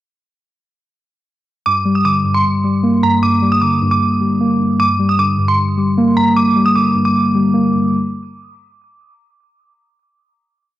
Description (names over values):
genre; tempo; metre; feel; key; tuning
hip hop, trap; 153 BPM; 4/4; half-time; G minor; A4 = 439 Hz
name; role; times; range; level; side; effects
dark detuned synth bell; melody; 1.7-7.9 s; Bb5 to Eb6; -17 LUFS; right 1 dB; chorus, tremolo, cassette tape
muted felt-like synth keys; accompaniment; 1.7-8.0 s; G2 to Bb3; -14 LUFS; equal; chorus
room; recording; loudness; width
light reverb; home recording on cassette; -12 LUFS; side -14 dB against mid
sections
1.7-7.9 breakdown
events
none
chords
1.7 Gm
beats
| 1.66 2.05 2.44 2.83 | 3.23 3.62 4.01 4.40 | 4.79 5.19 5.58 5.97 | 6.36 6.76 7.15 7.54